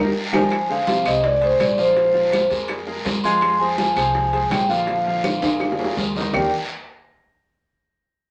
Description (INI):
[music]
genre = Afro-Cuban jazz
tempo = 165 BPM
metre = 4/4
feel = straight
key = Eb major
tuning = A4 = 440 Hz
[part]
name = vibraphone with medium mallets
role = melody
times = 0.0-6.5 s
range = Bb4 to C6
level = -22 LUFS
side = equal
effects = none
[part]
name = breathy baritone saxophone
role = second line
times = 0.0-6.5 s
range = Eb2 to Ab3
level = -32 LUFS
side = equal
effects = none
[part]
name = clear concert grand piano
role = accompaniment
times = 0.0-6.5 s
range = Eb3 to F5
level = -30 LUFS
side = equal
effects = none
[part]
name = upright bass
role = bass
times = 0.0-6.5 s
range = Bb1 to F2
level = -34 LUFS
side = equal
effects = none
[part]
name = bongos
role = percussion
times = 0.3-6.4 s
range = none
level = -32 LUFS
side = equal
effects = none
[part]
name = claves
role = percussion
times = 0.3-6.4 s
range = none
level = -33 LUFS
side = equal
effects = none
[part]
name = congas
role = percussion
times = 0.3-6.4 s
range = none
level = -31 LUFS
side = equal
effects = none
[part]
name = guiro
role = percussion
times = 0.3-6.4 s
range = none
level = -33 LUFS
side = equal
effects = none
[part]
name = timbales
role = percussion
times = 0.3-6.4 s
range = none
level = -31 LUFS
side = equal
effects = none
[sound]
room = wet studio reverb, RT60 0.8 s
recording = none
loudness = -20 LUFS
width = mono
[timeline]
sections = 0.5-6.3 A section; 6.3-7.8 B section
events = drum fill 0.0-0.5, 5.2-6.3; band accent 0.0-0.5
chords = 0.0 Eb; 0.5 Fm; 2.0 Bb5; 3.4 Fm; 4.9 Bb7; 6.3 Ebmaj7